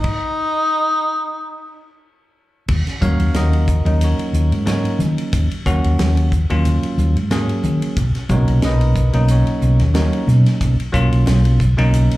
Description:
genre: electric jazz fusion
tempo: 91 BPM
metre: 4/4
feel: swing 55% on 16ths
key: Eb minor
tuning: A4 = 440 Hz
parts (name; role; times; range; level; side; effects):
- breathy tenor saxophone; melody; 0.0-2.0 s; Eb4; -18 LUFS; left 1 dB; slapback echo
- tight funk drum kit; drums; 0.0-12.2 s; crash cymbal, hi-hat, kick drum, ride cymbal, snare drum; -24 LUFS; equal; none
- hollow-body short-scale fingered electric bass; bass; 2.7-12.2 s; B1 to Eb3; -15 LUFS; equal; none
- congas; percussion; 2.7-12.1 s; none; -26 LUFS; right 2 dB; none
- bell-like tine electric piano; accompaniment; 3.0-12.2 s; A#2 to F5; -21 LUFS; equal; slapback echo
room: small room ambience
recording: live gig heard through the venue's PA, club reverb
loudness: -14 LUFS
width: side -17 dB against mid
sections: 0.0-2.7 A section; 2.7-12.2 B section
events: stop 0.0-2.7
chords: 0.0 N.C.; 2.7 Ebm9; 8.0 Bmaj9

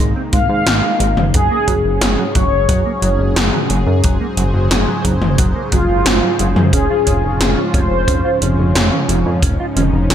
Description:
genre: synthwave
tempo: 89 BPM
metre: 4/4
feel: straight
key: unclear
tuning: A4 = 440 Hz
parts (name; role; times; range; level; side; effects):
- warm analog pad; sustained chords; 0.0-10.1 s; Ab2 to C5; -21 LUFS; equal; chorus, sidechain pumping
- mellow electric guitar; riff; 0.0-10.1 s; Gb3 to Ab4; -25 LUFS; right 2 dB; analog chorus, digital delay
- chorused synth bass; bass; 0.0-10.1 s; F1 to Ab2; -17 LUFS; equal; sidechain pumping
- mellow synth brass; melody; 0.3-8.6 s; F4 to F5; -19 LUFS; left 1 dB; chorus, digital delay
- 80s electronic pad drums; drums; 0.3-10.1 s; hi-hat, snare drum, toms; -18 LUFS; equal; gated reverb on snare and toms, gated reverb
- kick drum; drums; 0.3-9.6 s; none; -18 LUFS; equal; none
room: little or no reverb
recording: none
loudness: -12 LUFS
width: side -9 dB against mid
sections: 0.0-10.1 A section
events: none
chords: 0.0 Abadd9; 1.3 Gbsus2; 6.7 Db/F

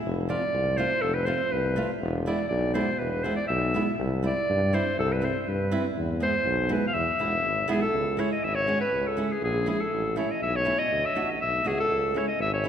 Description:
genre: klezmer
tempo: 122 BPM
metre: 2/4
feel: straight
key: E phrygian dominant, C# minor from 7.9 s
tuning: A4 = 440 Hz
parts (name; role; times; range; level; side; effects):
- warm tuba; bass; 0.0-12.7 s; E1 to G2; -30 LUFS; left 1 dB; none
- bright clarinet; melody; 0.3-12.7 s; G#4 to F5; -26 LUFS; equal; none
- flamenco guitar; accompaniment; 0.3-12.7 s; G3 to F#4; -31 LUFS; right 2 dB; none
room: wet concert hall reverb, RT60 2.4 s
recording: recorded in a church or concert hall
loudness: -24 LUFS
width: side -8 dB against mid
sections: 0.0-7.9 A section; 7.9-12.7 B section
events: none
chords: 0.0 F; 2.0 E; 4.0 C; 6.0 E; 7.9 C#m; 9.9 A; 10.9 D; 11.9 C#m

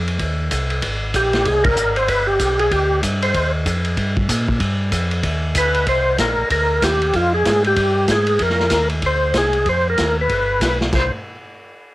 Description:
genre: soul jazz organ trio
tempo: 190 BPM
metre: 4/4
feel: swing 62% on 8ths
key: unclear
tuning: A4 = 440 Hz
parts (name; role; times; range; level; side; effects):
- mellow tonewheel organ; bass; 0.0-11.1 s; G1 to Bb2; -22 LUFS; equal; chorus vibrato, slow rotary speaker
- vintage drum kit; drums; 0.1-11.0 s; crash cymbal, hi-hat, kick drum, ride cymbal, snare drum; -22 LUFS; equal; cassette tape
- percussive tonewheel organ; melody; 1.2-3.5, 5.6-11.1 s; F4 to C5; -17 LUFS; equal; slow rotary speaker, overdrive, chorus vibrato
room: light reverb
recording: home recording on cassette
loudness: -15 LUFS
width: side -17 dB against mid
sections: 0.0-5.9 A section; 5.9-10.9 B section; 10.9-11.9 C section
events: band accent 1.6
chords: 0.0 Cm; 0.8 Abmaj7; 2.1 G; 3.3 Eb69; 4.6 G7; 5.9 Bbsus2; 6.5 Ebmaj7/D; 7.1 Fm; 7.8 N.C.; 8.4 F7sus4; 9.0 Csus2; 9.7 F7sus4; 10.3 G; 10.9 N.C.

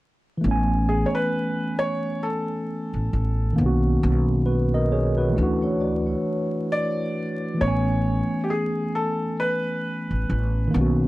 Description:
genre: lo-fi hip hop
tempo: 67 BPM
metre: 4/4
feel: swing 58% on 16ths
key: A major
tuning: A4 = 440 Hz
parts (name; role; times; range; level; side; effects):
- mellow tine electric piano; accompaniment; 0.4-11.1 s; D#3 to G#5; -24 LUFS; equal; medium stereo tremolo
- upright bass; bass; 0.4-11.1 s; A1 to D2; -23 LUFS; equal; none
- felt-muted upright piano; melody; 0.9-10.7 s; G4 to D5; -27 LUFS; equal; none
- vibraphone with soft mallets; second line; 5.4-7.4 s; C#4 to D5; -31 LUFS; left 2 dB; analog delay
room: moderate studio ambience, RT60 0.5 s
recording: vinyl crackle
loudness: -21 LUFS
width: side -18 dB against mid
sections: 0.4-11.1 A section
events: none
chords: 0.4 Amaj9; 3.6 Bmaj9; 5.4 Dmaj9; 7.6 Amaj9

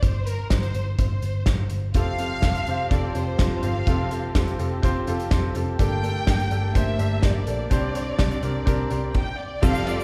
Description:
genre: piano-driven pop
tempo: 125 BPM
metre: 4/4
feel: straight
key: F major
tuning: A4 = 440 Hz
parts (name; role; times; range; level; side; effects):
- warm symphonic violin section; melody; 0.0-10.0 s; Bb4 to G5; -33 LUFS; equal; none
- vintage muted picked electric bass; bass; 0.0-10.0 s; F1 to C2; -29 LUFS; equal; none
- loose indie drum kit; drums; 0.0-10.0 s; crash cymbal, hi-hat, kick drum, ride cymbal, snare drum; -27 LUFS; equal; none
- warm studio string section; sustained chords; 1.9-10.0 s; F3 to C5; -38 LUFS; equal; none
- clear concert grand piano; accompaniment; 2.0-10.0 s; G2 to D5; -30 LUFS; equal; none
- direct-recorded clean electric guitar; riff; 9.6-10.0 s; F3 to A4; -29 LUFS; equal; none
- tube shaker; percussion; 9.6-10.0 s; none; -46 LUFS; equal; none
room: moderate scoring stage reverb, RT60 1.6 s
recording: recorded in a church or concert hall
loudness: -23 LUFS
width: mono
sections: 0.0-9.6 A section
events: none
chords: 0.0 Fadd9; 5.8 Gmadd9; 7.7 Csus2

